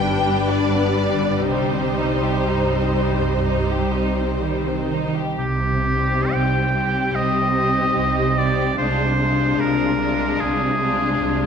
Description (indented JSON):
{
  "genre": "classical",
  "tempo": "59-76 BPM",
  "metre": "4/4",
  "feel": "rubato",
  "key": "C minor",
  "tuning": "A4 = 439 Hz",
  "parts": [
    { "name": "rich studio violin section", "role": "melody", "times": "0.0-11.5 s", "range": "F4 to G5", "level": "-28 LUFS", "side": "left 4 dB", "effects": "none" },
    { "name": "rich studio violin section", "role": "second line", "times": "0.0-11.5 s", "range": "G3 to C5", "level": "-26 LUFS", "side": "left 2 dB", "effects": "none" },
    { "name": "rich studio viola section", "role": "accompaniment", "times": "0.0-11.5 s", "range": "G3 to Eb4", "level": "-26 LUFS", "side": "right 1 dB", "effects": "none" },
    { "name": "concert harp", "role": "arpeggios", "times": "0.0-11.5 s", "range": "G2 to C5", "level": "-26 LUFS", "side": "left 7 dB", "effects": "none" },
    { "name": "warm studio cello section", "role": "bass", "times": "0.0-11.5 s", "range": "G2 to Eb3", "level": "-25 LUFS", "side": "right 4 dB", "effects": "none" },
    { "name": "warm studio double bass section", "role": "bass", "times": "0.0-11.5 s", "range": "G1 to C2", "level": "-27 LUFS", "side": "right 4 dB", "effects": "none" },
    { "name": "bright oboe", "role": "second line", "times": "5.4-11.5 s", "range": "G4 to G5", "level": "-22 LUFS", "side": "right 1 dB", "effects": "none" }
  ],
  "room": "wet concert hall reverb, RT60 2.1 s",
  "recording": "minimal, uncompressed stereo recording",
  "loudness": "-18 LUFS",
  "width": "side -7 dB against mid",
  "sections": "0.0-5.4 A section; 5.4-11.5 B section",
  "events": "none",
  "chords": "0.0 G; 1.5 Cm; 8.8 Dm7b5/C"
}